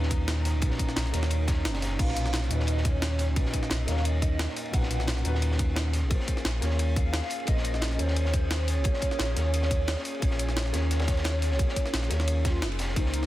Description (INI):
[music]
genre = liquid drum and bass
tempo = 175 BPM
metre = 4/4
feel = swing 53% on 16ths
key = unclear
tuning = A4 = 440 Hz
[part]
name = felt-muted upright piano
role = accompaniment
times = 0.0-13.3 s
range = Bb2 to Db5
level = -35 LUFS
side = left 1 dB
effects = tape echo
[part]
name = warm analog pad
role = sustained chords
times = 0.0-13.3 s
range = Db4 to C6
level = -40 LUFS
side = right 3 dB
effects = chorus, sidechain pumping
[part]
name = sub bass with octave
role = bass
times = 0.0-13.3 s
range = F1 to Eb2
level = -27 LUFS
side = equal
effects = none
[part]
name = crunchy breakbeat drum kit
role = drums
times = 0.0-13.2 s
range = ride cymbal, snare drum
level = -37 LUFS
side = equal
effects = high-pass filter on cymbals, high-pass filter on snare, high-pass filter on room
[part]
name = electronic kick drum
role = drums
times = 0.1-13.0 s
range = none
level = -27 LUFS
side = equal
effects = none
[part]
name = jungle sampler-style drum kit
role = drums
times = 0.1-13.3 s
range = crash cymbal, hi-hat, snare drum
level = -33 LUFS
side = equal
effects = none
[part]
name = hollow clarinet-like synth lead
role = melody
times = 2.0-13.3 s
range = Eb4 to Gb5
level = -35 LUFS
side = equal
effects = phaser, ensemble chorus, digital delay
[sound]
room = small room ambience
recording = dense, heavily limited modern master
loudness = -25 LUFS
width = side -15 dB against mid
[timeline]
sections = 0.0-13.0 A section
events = drop 0.0-13.0; band accent 12.6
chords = 0.0 Cbmaj9; 5.9 Bbm9